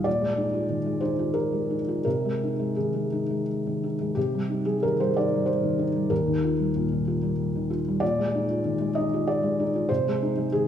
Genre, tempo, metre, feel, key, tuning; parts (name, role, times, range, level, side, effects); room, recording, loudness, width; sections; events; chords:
neoclassical minimalist piano; 84-97 BPM; 3/4; rubato; C minor; A4 = 440 Hz
felt-muted upright piano; solo; 0.0-10.7 s; Eb2 to Eb5; -23 LUFS; equal
wet recital hall reverb, RT60 1.7 s; recorded in a church or concert hall; -23 LUFS; side -9 dB against mid
0.0-4.2 A section; 4.2-10.7 A section
0.1 Bb7sus4; 2.0 Ab/C; 4.2 Cm; 6.1 Ebadd9; 8.0 Bb7sus4; 9.9 Ab/C